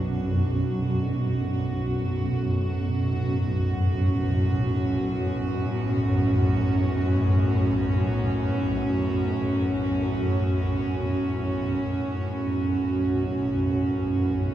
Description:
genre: dark ambient drone.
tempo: free time.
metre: none.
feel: none.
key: unclear.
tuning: A4 = 439 Hz.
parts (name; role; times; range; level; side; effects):
warm studio cello section; sustained chords; 0.0-14.5 s; A2 to F#4; -26 LUFS; right 1 dB; none.
swarming drone; drone; 0.0-14.5 s; B1 to F#2; -25 LUFS; equal; built-in reverb.
room: wet huge ambient reverb, RT60 8.0 s.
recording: in a vast, echoing space, small room ambience.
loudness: -22 LUFS.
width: side -12 dB against mid.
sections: 0.0-14.5 A section.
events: none.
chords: 0.0 Bm; 1.5 F#m/B.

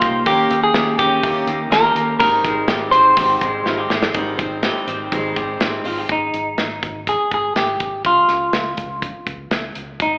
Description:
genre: jangly indie pop.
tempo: 123 BPM.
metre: 4/4.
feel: straight.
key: Ab major.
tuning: A4 = 440 Hz.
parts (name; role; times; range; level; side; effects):
semi-hollow electric guitar; melody; 0.0-10.2 s; Eb4 to C5; -16 LUFS; equal; slapback echo.
picked steel-string acoustic guitar; accompaniment; 0.0-6.1 s; Ab2 to C5; -25 LUFS; equal; slapback echo.
electric guitar through a small old amp; arpeggios; 0.0-6.7 s; Eb3 to G4; -23 LUFS; equal; slapback echo.
vintage muted fingered electric bass; bass; 0.0-10.2 s; Ab1 to Eb2; -31 LUFS; equal; none.
modern studio drum kit; drums; 0.0-10.1 s; hi-hat, kick drum, snare drum; -22 LUFS; equal; none.
room: moderate lush hall reverb, RT60 2.0 s, studio reverb.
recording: live gig heard through the venue's PA, club reverb, AM radio sound.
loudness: -15 LUFS.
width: side -33 dB against mid.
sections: 0.0-4.1 A section; 4.1-6.1 B section; 6.1-10.2 C section.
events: drum fill 3.7-4.1.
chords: 0.3 Eb7; 2.2 Abmaj7; 6.1 Ab5; 8.1 Db.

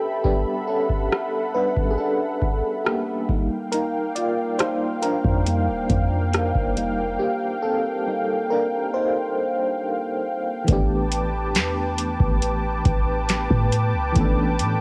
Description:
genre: contemporary R&B.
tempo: 69 BPM.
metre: 4/4.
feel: straight.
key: unclear.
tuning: A4 = 441 Hz.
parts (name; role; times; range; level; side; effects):
FM electric piano with tremolo; accompaniment; 0.0-14.8 s; E3 to D5; -27 LUFS; equal; phaser, cassette tape.
warm analog pad; sustained chords; 0.0-14.8 s; Bb3 to D6; -29 LUFS; equal; chorus, cassette tape.
booming analog drum machine; drums; 0.2-14.8 s; hi-hat, kick drum, rim click, snare drum; -25 LUFS; equal; cassette tape.
clean 808-style bass; bass; 5.2-14.8 s; Eb1 to A2; -26 LUFS; equal; none.
room: little or no reverb.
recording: home recording on cassette, lossy compression artefacts.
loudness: -23 LUFS.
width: mono.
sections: 0.0-10.7 A section; 10.7-14.8 B section.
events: FM electric piano solo 0.0-10.7; drums muted 7.2-10.7.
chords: 0.0 A9sus4; 3.3 F9sus4; 10.7 A9sus4.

